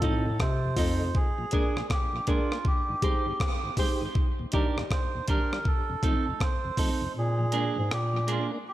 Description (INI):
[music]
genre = dub reggae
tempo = 80 BPM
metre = 4/4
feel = swing 62% on 16ths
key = unclear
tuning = A4 = 440 Hz
[part]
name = melodica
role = melody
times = 0.0-8.7 s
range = F4 to C5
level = -33 LUFS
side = right 2 dB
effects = tape echo
[part]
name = clean electric guitar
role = accompaniment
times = 0.0-8.6 s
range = Bb3 to C5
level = -34 LUFS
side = right 4 dB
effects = tape echo
[part]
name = mellow tonewheel organ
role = accompaniment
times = 0.0-8.6 s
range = Eb2 to Eb4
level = -37 LUFS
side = left 1 dB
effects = slow rotary speaker, tape echo
[part]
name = mellow reed electric piano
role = stabs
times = 0.0-4.8 s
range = Eb4 to Eb5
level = -36 LUFS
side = left 3 dB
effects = fast tremolo, tape echo
[part]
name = dark bass clarinet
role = bass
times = 0.0-1.1, 7.2-8.4 s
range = F2 to C3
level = -28 LUFS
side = equal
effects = none
[part]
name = breakbeat sampler-style drum kit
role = drums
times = 0.0-8.5 s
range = hi-hat, kick drum, rim click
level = -28 LUFS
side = equal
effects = none
[sound]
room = light reverb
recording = none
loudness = -25 LUFS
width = side -14 dB against mid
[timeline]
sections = 0.0-8.7 A section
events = kick muted 7.2-8.7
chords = 0.0 F7; 1.2 Bb7; 2.7 Abmaj7; 4.2 Ebmaj7; 5.7 F7; 7.2 Bb7